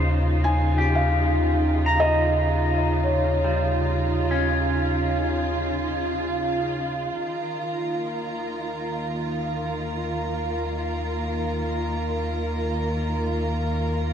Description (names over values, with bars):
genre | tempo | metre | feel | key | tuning
ambient | 58 BPM | 4/4 | straight | Eb mixolydian | A4 = 438 Hz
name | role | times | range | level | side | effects
dark studio string section | sustained chords | 0.0-14.1 s | Db3 to Bb4 | -26 LUFS | right 1 dB | none
clean electric guitar | arpeggios | 0.0-7.3 s | G3 to Bb5 | -28 LUFS | equal | ping-pong delay
round analog bass | bass | 0.0-14.1 s | Eb2 | -26 LUFS | equal | tube saturation
felt-muted upright piano | melody | 0.4-6.6 s | Db5 to Ab5 | -27 LUFS | left 1 dB | ping-pong delay
clear studio violin section | texture | 7.2-14.1 s | Bb4 to Bb5 | -34 LUFS | right 1 dB | none
room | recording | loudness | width
wet huge ambient reverb, RT60 8.8 s | dark, warm production | -22 LUFS | side -8 dB against mid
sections
0.0-7.2 A section; 7.2-14.1 B section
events
none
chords
0.0 Eb7; 7.2 Eb5